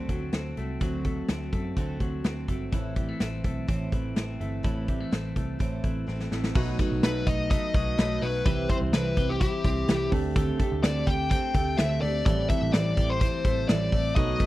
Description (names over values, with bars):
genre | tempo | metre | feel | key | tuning
jangly indie pop | 126 BPM | 4/4 | straight | unclear | A4 = 439 Hz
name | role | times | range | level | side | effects
picked steel-string acoustic guitar | accompaniment | 0.0-14.5 s | A2 to C5 | -33 LUFS | right 4 dB | none
twelve-string electric guitar | arpeggios | 0.0-14.5 s | E3 to G4 | -35 LUFS | left 5 dB | none
vintage muted picked electric bass | bass | 0.0-14.4 s | G1 to F#2 | -31 LUFS | equal | none
big rock drum kit | drums | 0.1-14.5 s | crash cymbal, hi-hat, kick drum, snare drum | -27 LUFS | equal | none
reed electric piano | accompaniment | 6.6-14.5 s | G3 to A4 | -36 LUFS | right 5 dB | none
fuzz lead guitar | melody | 7.0-14.5 s | G4 to G5 | -29 LUFS | left 2 dB | distortion, slapback echo
room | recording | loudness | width
studio reverb | dry, close 1970s-style studio recording | -24 LUFS | side -16 dB against mid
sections
0.0-6.6 A section; 6.6-14.5 B section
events
drum fill 6.1-6.6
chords
0.0 D7; 2.7 Am; 6.6 B7; 8.5 C; 10.1 D7sus4; 12.3 Am7